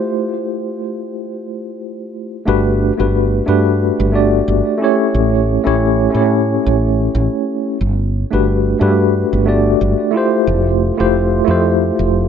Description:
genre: sunset chillout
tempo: 90 BPM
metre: 4/4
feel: swing 55% on 16ths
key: G lydian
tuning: A4 = 438 Hz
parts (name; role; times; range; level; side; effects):
- tine electric piano; accompaniment; 0.0-12.3 s; A3 to D5; -15 LUFS; equal; medium stereo tremolo, auto-pan, digital delay
- woody fretless electric bass; bass; 2.5-12.3 s; F1 to A2; -16 LUFS; equal; wide subtle chorus
room: light reverb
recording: none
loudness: -13 LUFS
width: side -8 dB against mid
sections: 0.0-2.5 A section; 2.5-12.3 B section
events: none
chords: 0.0 Fmaj9; 2.5 Gmaj9; 5.1 A7; 7.8 Gmaj9; 10.5 Fmaj9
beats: 0.48 1.14 1.81 | 2.48 3.14 3.81 4.48 | 5.14 5.81 6.48 7.14 | 7.81 8.48 9.14 9.81 | 10.48 11.14 11.81

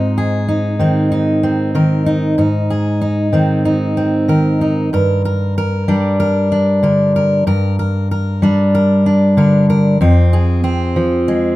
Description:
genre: folk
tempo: 94 BPM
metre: 4/4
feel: straight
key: unclear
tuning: A4 = 440 Hz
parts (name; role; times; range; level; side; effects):
- fingerpicked steel-string acoustic guitar; solo; 0.0-11.6 s; F2 to Bb4; -12 LUFS; equal; none
room: small room reverb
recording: rough home demo mix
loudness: -12 LUFS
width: side -17 dB against mid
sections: 0.0-10.0 A section; 10.0-11.6 B section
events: none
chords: 0.0 Abadd9; 4.9 Gm; 10.0 Fm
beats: 0.48 1.11 1.75 | 2.38 3.02 3.65 4.29 | 4.92 5.56 6.20 6.83 | 7.47 8.11 8.74 9.38 | 10.01 10.65 11.28

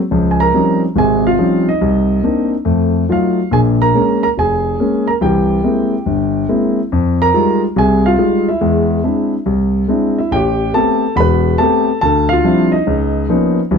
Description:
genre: solo jazz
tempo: 141 BPM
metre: 4/4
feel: swing 66% on 8ths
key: F minor, A minor from 10.3 s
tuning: A4 = 442 Hz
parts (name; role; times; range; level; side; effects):
- dark baby grand piano; solo; 0.1-13.8 s; E1 to B5; -12 LUFS; equal; none
room: light reverb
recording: dark, warm production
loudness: -12 LUFS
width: side -6 dB against mid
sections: 0.0-10.3 A section; 10.3-13.8 B section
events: none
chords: 0.1 Dbmaj9#11; 1.8 Cm9; 2.7 F7b9; 3.5 Bbm7; 5.2 C7b13; 6.9 Fm9; 8.6 Eaug7; 10.3 Am9; 12.0 Dm11; 12.9 C#13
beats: | 0.11 0.54 0.96 1.39 | 1.81 2.24 2.66 3.09 | 3.51 3.94 4.36 4.79 | 5.21 5.64 6.07 6.49 | 6.92 7.34 7.76 8.19 | 8.62 9.04 9.47 9.89 | 10.32 10.74 11.16 11.59 | 12.01 12.44 12.86 13.29 | 13.71

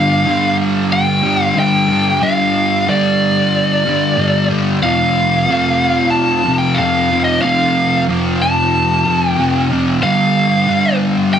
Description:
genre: rock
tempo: 92 BPM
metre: 4/4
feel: straight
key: unclear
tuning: A4 = 440 Hz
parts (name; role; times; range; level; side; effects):
- biting lead guitar; melody; 0.0-11.4 s; D5 to A5; -15 LUFS; left 1 dB; overdrive, tape echo
- fuzz guitar; riff; 0.0-11.4 s; F2 to G3; -14 LUFS; equal; distortion, analog chorus
room: light reverb, digital ambience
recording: dense, heavily limited modern master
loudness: -12 LUFS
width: side -8 dB against mid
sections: 0.0-11.4 A section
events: none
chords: 0.0 G5; 4.8 F; 10.0 G5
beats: 0.27 0.92 1.57 | 2.23 2.88 3.53 4.18 | 4.83 5.48 6.13 6.78 | 7.43 8.08 8.73 9.38 | 10.03 10.68 11.33

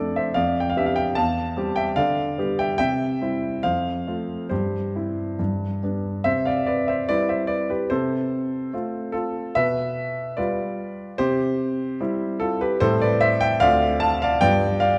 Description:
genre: classical-period piano sonatina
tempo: 74 BPM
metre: 2/4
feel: rubato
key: C major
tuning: A4 = 442 Hz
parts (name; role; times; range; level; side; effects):
- warm grand piano; solo; 0.0-15.0 s; D2 to A5; -23 LUFS; equal; none
room: wet recital hall reverb, RT60 1.7 s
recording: dark, warm production, nothing above 10.3 kHz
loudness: -23 LUFS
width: mono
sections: 0.0-6.3 A section; 6.3-15.0 B section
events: none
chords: 0.4 G7/F; 1.2 C/E; 2.0 G7/D; 2.8 C; 3.6 F; 4.5 C/G; 5.4 G; 6.3 C; 7.9 F/C; 9.6 G7/B; 11.2 C; 12.8 Am7; 13.6 Dm7; 14.4 G7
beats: 0.36 | 1.17 1.98 | 2.80 3.63 | 4.51 5.39 | 6.26 7.09 | 7.91 8.73 | 9.57 10.38 | 11.19 12.00 | 12.80 13.60 | 14.40

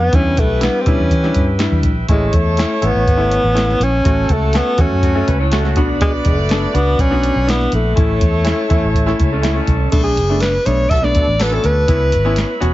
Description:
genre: uptempo 1960s-style soul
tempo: 122 BPM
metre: 4/4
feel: straight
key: A major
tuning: A4 = 437 Hz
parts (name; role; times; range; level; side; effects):
- breathy alto saxophone; melody; 0.0-12.6 s; G#3 to E5; -18 LUFS; equal; none
- tonewheel organ; sustained chords; 0.0-12.7 s; D4 to B5; -30 LUFS; right 2 dB; overdrive, stopped rotary speaker
- vintage muted fingered electric bass; bass; 0.0-12.7 s; E1 to E3; -17 LUFS; equal; none
- clear horn section; second line; 0.1-11.9 s; C#4 to D5; -26 LUFS; equal; tape echo
- clear baby grand piano; accompaniment; 0.1-12.7 s; G3 to A4; -22 LUFS; left 2 dB; none
- soft vintage rhythm box; drums; 0.1-12.7 s; crash cymbal, hi-hat, kick drum, snare drum; -18 LUFS; equal; none
- electric guitar through a small old amp; riff; 5.0-5.9, 9.3-9.9 s; A3 to C#5; -24 LUFS; left 1 dB; none
room: little or no reverb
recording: heavily compressed radio sound, nothing above 7.7 kHz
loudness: -13 LUFS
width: side -15 dB against mid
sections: 0.0-9.9 A section; 9.9-12.7 B section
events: none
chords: 0.1 Em7; 2.1 A; 4.0 F#m/A; 5.8 Bm; 8.0 A; 9.9 Bm7; 11.9 C#m7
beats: | 0.13 0.62 1.11 1.60 | 2.09 2.58 3.07 3.56 | 4.05 4.54 5.03 5.52 | 6.01 6.50 6.99 7.48 | 7.97 8.46 8.95 9.44 | 9.93 10.41 10.90 11.39 | 11.88 12.37

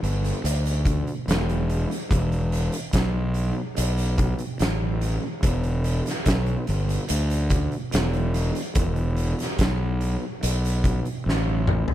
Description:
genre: stoner and doom metal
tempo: 72 BPM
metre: 4/4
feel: straight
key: E minor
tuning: A4 = 440 Hz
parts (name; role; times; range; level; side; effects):
- fuzz fingered electric bass; bass; 0.0-11.8 s; E1 to D2; -24 LUFS; equal; overdrive
- oversized low-tuned drum kit; drums; 0.0-11.9 s; hi-hat, kick drum, snare drum, toms; -26 LUFS; equal; none
room: little or no reverb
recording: none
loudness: -22 LUFS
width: side -13 dB against mid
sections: 0.0-11.9 A section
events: drum fill 11.3-11.9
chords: none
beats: 0.44 1.27 | 2.10 2.94 3.77 4.60 | 5.43 6.26 7.09 7.92 | 8.75 9.59 10.42 11.25

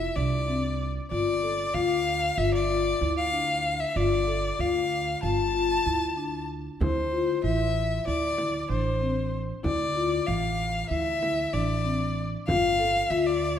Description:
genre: contemporary instrumental, chamber music in an uneven meter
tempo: 190 BPM (eighths)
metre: 9/8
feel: straight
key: unclear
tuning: A4 = 441 Hz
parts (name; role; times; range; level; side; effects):
- rich violin; melody; 0.0-13.6 s; C5 to A5; -28 LUFS; left 2 dB; none
- marimba with soft mallets; arpeggios; 0.0-13.5 s; E3 to A4; -29 LUFS; left 5 dB; none
- upright bass; bass; 0.0-13.6 s; G1 to D2; -30 LUFS; right 3 dB; none
- frame drum; percussion; 6.8-12.8 s; none; -33 LUFS; left 1 dB; none
room: moderate scoring stage reverb, RT60 1.8 s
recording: none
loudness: -24 LUFS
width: side -9 dB against mid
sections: 0.0-13.6 A section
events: none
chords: 0.0 F5 (rootless); 1.1 Gsus2; 6.8 D7sus2; 12.5 Gsus2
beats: 0.17 0.49 0.80 | 1.12 1.44 1.75 2.07 2.38 2.70 3.02 3.33 3.65 | 3.97 4.28 4.60 4.91 5.23 5.54 5.86 6.18 6.49 | 6.81 7.12 7.44 7.75 8.07 8.39 8.70 9.02 9.33 | 9.65 9.96 10.28 10.59 10.91 11.22 11.54 11.85 12.17 | 12.48 12.80 13.11 13.43

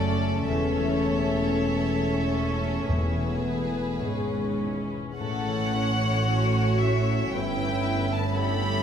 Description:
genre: classical, slow romantic movement for symphony orchestra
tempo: 49-60 BPM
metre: 4/4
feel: rubato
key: A major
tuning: A4 = 440 Hz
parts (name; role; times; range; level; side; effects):
- clear studio violin section; melody; 0.0-8.8 s; D5 to B5; -34 LUFS; equal; none
- rich studio violin section; second line; 0.0-8.8 s; E4 to C#5; -33 LUFS; left 3 dB; none
- dark studio viola section; accompaniment; 0.0-8.8 s; A3 to F#4; -32 LUFS; right 2 dB; none
- dark French horn section; sustained chords; 0.0-8.8 s; G#3 to C#4; -29 LUFS; left 3 dB; none
- concert harp; arpeggios; 0.0-8.8 s; E2 to C#5; -33 LUFS; left 8 dB; none
- dark studio double bass section; bass; 0.0-8.8 s; E1 to A1; -30 LUFS; right 3 dB; none
- rich studio cello section; bass; 0.0-8.8 s; E2 to A2; -32 LUFS; right 4 dB; none
- timpani; percussion; 2.9-4.6 s; E2; -30 LUFS; equal; none
room: wet recital hall reverb, RT60 1.7 s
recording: none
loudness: -23 LUFS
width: side -8 dB against mid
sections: 0.0-8.8 A section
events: none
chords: 0.5 A/E; 2.9 E; 5.2 A; 7.4 A7/G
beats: | 0.48 1.69 2.88 4.03 | 5.20 6.29 7.36 8.38

